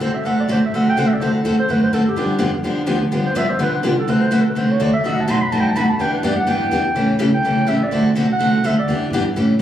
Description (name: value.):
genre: acoustic string swing (jazz manouche).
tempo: 250 BPM.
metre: 4/4.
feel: swing 54% on 8ths.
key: D mixolydian.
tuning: A4 = 440 Hz.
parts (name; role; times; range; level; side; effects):
mellow clarinet; melody; 0.0-9.1 s; D4 to C6; -22 LUFS; right 2 dB; tape echo.
picked steel-string acoustic guitar; accompaniment; 0.0-9.6 s; B2 to A4; -17 LUFS; left 1 dB; none.
upright bass; bass; 0.0-9.6 s; E1 to A2; -25 LUFS; right 2 dB; none.
room: moderate club reverb, RT60 0.5 s.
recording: recorded on a phone in the room, club reverb, compression.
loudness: -15 LUFS.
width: side -11 dB against mid.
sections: 0.0-9.6 A section.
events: clarinet solo 0.0-9.6.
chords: 0.0 D7; 2.2 G7; 4.1 D7; 5.0 B7; 6.0 Em7; 7.0 A7; 7.9 D7; 8.9 Em7.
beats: 0.00 | 0.24 0.48 0.72 0.96 | 1.20 1.44 1.68 1.92 | 2.16 2.40 2.64 2.88 | 3.12 3.36 3.60 3.84 | 4.08 4.32 4.55 4.79 | 5.04 5.28 5.51 5.75 | 5.99 6.23 6.47 6.71 | 6.95 7.19 7.43 7.67 | 7.91 8.15 8.39 8.63 | 8.87 9.11 9.36 9.60.